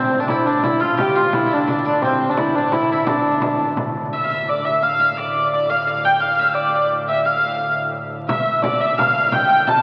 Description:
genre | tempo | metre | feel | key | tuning
medieval dance | 115 BPM (dotted quarters) | 6/8 | straight | D minor | A4 = 439 Hz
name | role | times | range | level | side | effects
dark hurdy-gurdy | melody | 0.0-9.8 s | C4 to A5 | -21 LUFS | equal | none
breathy alto recorder | second line | 0.0-9.8 s | C5 to G6 | -26 LUFS | equal | none
koto | second line | 0.0-9.8 s | C4 to A5 | -27 LUFS | equal | none
pipe organ, strings celeste | drone | 0.0-9.8 s | D2 to A2 | -34 LUFS | equal | none
frame drum | percussion | 0.1-3.9, 8.3-9.8 s | none | -28 LUFS | equal | none
room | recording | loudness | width
wet cathedral reverb, RT60 4.6 s | very old 78 rpm record, vinyl crackle | -19 LUFS | mono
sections
0.0-4.1 A section; 4.1-9.8 B section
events
none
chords
none

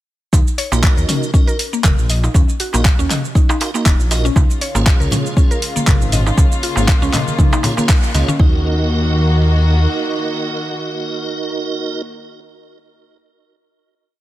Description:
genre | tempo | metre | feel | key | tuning
afro house | 119 BPM | 4/4 | swing 55% on 16ths | Eb minor | A4 = 440 Hz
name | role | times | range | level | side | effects
mallet-like synth pluck | arpeggios | 0.3-8.6 s | Bb3 to Eb5 | -23 LUFS | equal | chorus, sidechain pumping, tape echo
dark detuned saw bass | bass | 0.3-9.9 s | Eb1 to Eb2 | -16 LUFS | equal | sidechain pumping
deep house drum kit | drums | 0.3-8.4 s | handclaps, hi-hat, shaker, toms | -21 LUFS | equal | none
electronic kick drum | drums | 0.3-8.5 s | none | -13 LUFS | equal | none
darbuka | percussion | 0.3-8.3 s | none | -24 LUFS | right 2 dB | none
tonewheel organ | stabs | 0.7-12.0 s | Db4 to Eb5 | -24 LUFS | right 4 dB | overdrive, chorus vibrato, slow rotary speaker, sidechain pumping, tape echo
dark studio string section | sustained chords | 4.4-12.0 s | Db3 to Gb4 | -24 LUFS | left 2 dB | sidechain pumping
congas | percussion | 5.1-8.4 s | none | -22 LUFS | left 2 dB | none
room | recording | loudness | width
little or no reverb | none | -13 LUFS | side -14 dB against mid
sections
0.3-8.4 drop; 8.4-12.4 final chord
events
drop 0.3-8.4; band accent 7.9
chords
0.3 Ebm; 4.4 Db; 8.4 Ebm

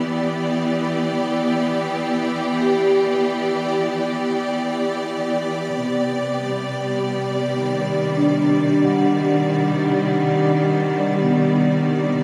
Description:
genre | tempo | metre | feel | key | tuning
ambient | free time | none | none | unclear | A4 = 439 Hz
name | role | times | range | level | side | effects
clear studio string section | sustained chords | 0.0-12.2 s | C3 to D5 | -22 LUFS | equal | none
vibraphone with soft mallets | arpeggios | 0.0-12.2 s | B3 to F#5 | -25 LUFS | equal | diffuse ambient delay
room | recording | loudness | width
wet cathedral reverb, RT60 6.8 s | in a vast, echoing space | -20 LUFS | mono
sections
0.0-12.2 A section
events
none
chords
0.0 Em7; 5.8 Cmadd9

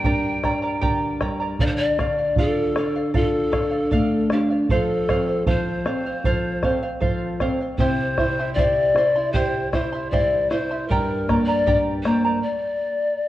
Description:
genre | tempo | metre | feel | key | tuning
andean folk, Andean ensemble | 78 BPM | 4/4 | straight | unclear | A4 = 440 Hz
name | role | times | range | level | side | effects
breathy mellow pan flute | melody | 0.0-13.3 s | G4 to G5 | -23 LUFS | left 2 dB | none
charango | accompaniment | 0.0-12.4 s | E4 to C6 | -27 LUFS | right 3 dB | none
nylon-string guitar | accompaniment | 0.0-12.4 s | G2 to G4 | -24 LUFS | left 1 dB | none
bombo | percussion | 0.0-12.2 s | none | -25 LUFS | right 1 dB | none
room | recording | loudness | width
moderate scoring stage reverb, RT60 1.9 s | worn, warbling old tape, cassette tape, warbly pitch drift | -19 LUFS | side -14 dB against mid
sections
0.0-13.3 A section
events
stop 12.4-13.3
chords
0.0 Gm; 1.6 Dm; 4.7 F; 7.8 C; 10.9 Gm; 12.4 N.C.

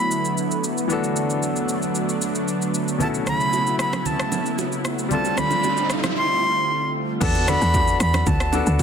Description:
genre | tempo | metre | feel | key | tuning
amapiano | 114 BPM | 4/4 | straight | E minor | A4 = 439 Hz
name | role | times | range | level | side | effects
bright reedy jazz flute | melody | 0.0-8.8 s | A5 to C6 | -23 LUFS | right 1 dB | tape echo
clear concert grand piano | accompaniment | 0.0-8.8 s | B2 to A4 | -28 LUFS | left 6 dB | none
lush unison pad | sustained chords | 0.0-7.2 s | C#3 to F4 | -25 LUFS | right 1 dB | chorus
deep house drum kit | drums | 0.1-8.8 s | crash cymbal, kick drum, rim click, shaker | -26 LUFS | equal | overdrive
congas and bongos | percussion | 3.0-8.8 s | none | -29 LUFS | right 7 dB | none
riser | sound effects | 4.3-6.2 s | none | -30 LUFS | equal | none
woody log drum bass | bass | 7.2-8.8 s | D2 to E2 | -21 LUFS | equal | none
room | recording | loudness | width
light reverb, digital ambience | dense, heavily limited modern master | -19 LUFS | side -7 dB against mid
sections
0.0-7.2 A section; 7.2-8.8 B section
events
riser 4.3-7.2; drop 7.2-8.8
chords
0.0 E9sus4; 3.0 B9sus4; 5.1 G9sus4; 7.2 E9sus4

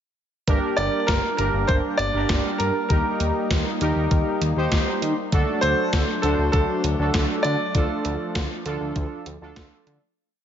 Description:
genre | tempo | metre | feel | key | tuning
synth-pop | 99 BPM | 4/4 | straight | G minor | A4 = 440 Hz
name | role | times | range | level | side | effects
analog synth brass | accompaniment | 0.5-10.0 s | D4 to C5 | -27 LUFS | right 2 dB | chorus
brassy analog pad | sustained chords | 0.5-10.1 s | F3 to Eb4 | -30 LUFS | left 1 dB | chorus
fat analog bass | bass | 0.5-10.0 s | G1 to Eb3 | -26 LUFS | equal | none
gated 80s digital drum machine | drums | 0.5-10.0 s | hi-hat, kick drum, snare drum | -24 LUFS | equal | gated reverb, gated reverb snare
bright concert grand piano | melody | 0.8-9.8 s | A4 to D5 | -25 LUFS | equal | ping-pong delay
room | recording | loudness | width
light reverb, digital ambience | nothing above 7.5 kHz | -20 LUFS | side -9 dB against mid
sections
0.5-10.2 verse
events
fade-out 7.7-10.2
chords
0.5 Gm; 2.9 Eb; 5.3 D; 7.7 Dm

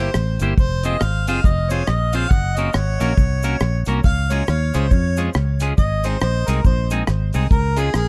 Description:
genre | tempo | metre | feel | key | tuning
ska | 138 BPM | 4/4 | swing 61% on 8ths | unclear | A4 = 440 Hz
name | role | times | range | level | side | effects
warm harmonica | melody | 0.0-8.1 s | Ab4 to Gb5 | -28 LUFS | equal | tape echo
clean electric guitar | accompaniment | 0.0-7.9 s | Ab3 to C5 | -29 LUFS | equal | tape echo
fingered electric bass | bass | 0.0-8.1 s | F1 to F2 | -22 LUFS | equal | none
deep reggae drum kit | drums | 0.1-8.1 s | hi-hat, kick drum, rim click | -20 LUFS | equal | none
cabasa | percussion | 0.1-8.1 s | none | -43 LUFS | equal | none
room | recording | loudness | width
little or no reverb | dark, warm production | -19 LUFS | mono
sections
0.0-8.1 A section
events
none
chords
0.0 C7; 0.6 Fm; 2.3 Gb; 4.0 Db; 5.8 Ab; 7.5 Db

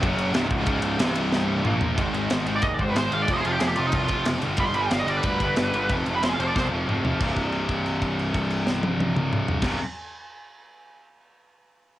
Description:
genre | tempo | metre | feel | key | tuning
heavy metal | 184 BPM | 4/4 | straight | unclear | A4 = 440 Hz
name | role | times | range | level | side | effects
bright studio string section | sustained chords | 0.0-2.0 s | none | barely audible | none | none
fuzz guitar | riff | 0.0-4.4 s | C2 to Bb3 | -30 LUFS | equal | distortion, cassette tape
high-gain distorted guitar | riff | 0.0-9.8 s | C2 to Bb3 | -31 LUFS | right 6 dB | distortion, cassette tape
scooped high-gain guitar | riff | 0.0-9.8 s | C2 to Bb3 | -28 LUFS | left 4 dB | distortion, cassette tape
fuzz picked electric bass | bass | 0.0-9.8 s | C1 to Eb2 | -30 LUFS | equal | overdrive
tight metal drum kit | drums | 0.0-9.7 s | crash cymbal, kick drum, ride cymbal, snare drum, toms | -27 LUFS | equal | cassette tape
nasal lead guitar with a parked wah | melody | 2.6-6.7 s | Eb4 to C6 | -26 LUFS | right 1 dB | overdrive, cassette tape
room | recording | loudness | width
little or no reverb | home recording on cassette | -21 LUFS | side -14 dB against mid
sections
0.0-2.0 A section; 2.0-7.2 B section; 7.2-9.8 C section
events
drum fill 1.3-2.0, 6.5-7.2; lead electric guitar solo 2.0-7.2; held note 7.2-9.6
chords
0.0 F#5; 0.3 Cm; 0.7 Db5; 1.0 Cm; 1.6 Bb5; 2.0 Ab5; 3.3 F5; 4.4 G; 5.9 F5; 7.2 C5

